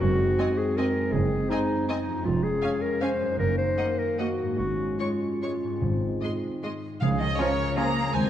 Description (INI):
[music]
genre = classical, orchestral ballroom waltz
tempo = 138-175 BPM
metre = 3/4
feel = rubato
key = Db major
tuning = A4 = 440 Hz
[part]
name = warm clarinet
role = second line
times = 0.0-7.9 s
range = Db4 to C5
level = -28 LUFS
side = equal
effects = none
[part]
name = mellow French horn section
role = sustained chords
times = 0.0-8.3 s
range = Eb3 to Db4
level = -32 LUFS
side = left 1 dB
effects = none
[part]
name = concert harp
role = arpeggios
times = 0.0-8.3 s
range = F2 to Ab4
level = -34 LUFS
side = left 5 dB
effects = none
[part]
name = clear symphonic double bass section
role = bass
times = 0.0-8.3 s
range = F1 to Eb2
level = -31 LUFS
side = right 2 dB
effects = none
[part]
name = rich symphonic cello section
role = bass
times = 0.0-8.3 s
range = F2 to Bb3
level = -32 LUFS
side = right 2 dB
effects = none
[part]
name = rich studio violin section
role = melody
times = 0.4-8.3 s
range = Db5 to Db6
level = -36 LUFS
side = equal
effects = none
[part]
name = warm symphonic violin section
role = second line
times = 0.4-7.8 s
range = F4 to F5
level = -38 LUFS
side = left 2 dB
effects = none
[part]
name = rich symphonic viola section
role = accompaniment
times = 0.4-7.9 s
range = F3 to Db4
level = -36 LUFS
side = right 3 dB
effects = none
[part]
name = timpani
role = percussion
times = 5.8-7.5 s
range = Ab2 to Db3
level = -31 LUFS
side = right 1 dB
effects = none
[part]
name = mellow hollow concert flute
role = second line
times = 7.0-8.3 s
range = Db5 to Bb5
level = -32 LUFS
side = equal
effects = none
[part]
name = warm cor anglais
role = second line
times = 7.0-8.3 s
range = Ab4 to C5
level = -34 LUFS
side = right 2 dB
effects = none
[part]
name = warm bassoon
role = accompaniment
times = 7.4-7.9 s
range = F3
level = -36 LUFS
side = right 1 dB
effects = none
[sound]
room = wet concert hall reverb, RT60 2.0 s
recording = dark, warm production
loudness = -24 LUFS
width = side -11 dB against mid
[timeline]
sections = 0.0-7.0 A section; 7.0-8.3 B section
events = none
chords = 0.0 Ab7/Gb; 2.3 Db/F; 3.4 Ebm/Gb; 4.6 Db/Ab; 5.8 Ab; 7.0 Db